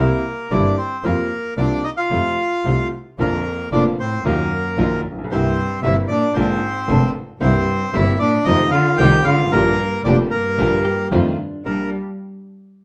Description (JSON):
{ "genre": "tango", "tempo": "113 BPM", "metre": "4/4", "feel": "rubato", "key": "Bb major", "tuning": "A4 = 438 Hz", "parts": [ { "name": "bandoneon", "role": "melody", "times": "0.0-11.9 s", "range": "Bb3 to G5", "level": "-23 LUFS", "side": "equal", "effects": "none" }, { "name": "clear upright piano", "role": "accompaniment", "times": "0.0-11.9 s", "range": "F1 to G4", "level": "-25 LUFS", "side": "equal", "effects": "none" }, { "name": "muted studio string section", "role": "stabs", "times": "0.0-11.9 s", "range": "Gb3 to G4", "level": "-31 LUFS", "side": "equal", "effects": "none" }, { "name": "warm double bass", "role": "bass", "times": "0.0-11.9 s", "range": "F1 to F2", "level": "-23 LUFS", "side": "equal", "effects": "none" }, { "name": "warm cello", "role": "second line", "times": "3.2-11.9 s", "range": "F2 to G3", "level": "-25 LUFS", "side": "equal", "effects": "none" }, { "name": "hollow-body jazz guitar", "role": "second line", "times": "10.8-11.9 s", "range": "D4 to G4", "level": "-30 LUFS", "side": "equal", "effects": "none" } ], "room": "wet studio reverb, RT60 0.8 s", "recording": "none", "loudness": "-19 LUFS", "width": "mono", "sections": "0.0-11.7 A section; 11.7-12.8 B section", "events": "none", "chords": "0.0 C7; 1.0 Fsus4; 2.1 F; 3.2 Bb; 4.2 Ebmadd9; 5.3 C7; 6.4 Bb7; 7.4 C7; 8.5 F7; 9.5 Bb6; 11.1 F7; 11.7 Bb6" }